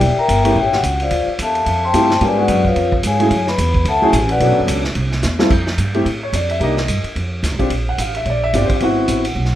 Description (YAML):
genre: jazz, small-group swing and bop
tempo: 218 BPM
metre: 4/4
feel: swing 59% on 8ths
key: unclear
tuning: A4 = 440 Hz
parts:
  - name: vibraphone with medium mallets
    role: melody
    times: 0.0-4.6 s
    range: F4 to C6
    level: -16 LUFS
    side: left 2 dB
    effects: none
  - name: upright bass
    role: bass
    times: 0.0-9.6 s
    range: E1 to A2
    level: -19 LUFS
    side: right 1 dB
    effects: none
  - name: vintage drum kit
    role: drums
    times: 0.0-9.5 s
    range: crash cymbal, hi-hat, kick drum, ride cymbal, snare drum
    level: -22 LUFS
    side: right 1 dB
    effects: none
  - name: warm concert grand piano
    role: accompaniment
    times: 0.4-9.6 s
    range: F#3 to Gb5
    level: -18 LUFS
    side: equal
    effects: none
room: moderate studio reverb, RT60 0.6 s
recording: minimal, uncompressed stereo recording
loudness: -14 LUFS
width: side -12 dB against mid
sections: 0.0-5.5 A section; 5.5-9.6 A section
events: vibraphone solo 0.0-5.5; drum fill 5.2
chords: 0.0 Em7b5; 0.6 A7; 1.1 Dm11; 2.2 G#m7b5; 2.8 C#7; 3.3 F#m7; 4.4 Bm7; 5.0 C; 5.5 Fmaj7; 6.6 Cm7; 7.2 F69; 7.7 Bb69; 8.8 Ab7alt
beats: | 0.01 0.29 0.56 0.84 | 1.11 1.39 1.66 1.94 | 2.21 2.48 2.76 3.03 | 3.31 3.58 3.86 4.13 | 4.41 4.68 4.96 5.23 | 5.51 5.78 6.06 6.33 | 6.61 6.88 7.16 7.43 | 7.71 7.98 8.26 8.53 | 8.81 9.08 9.36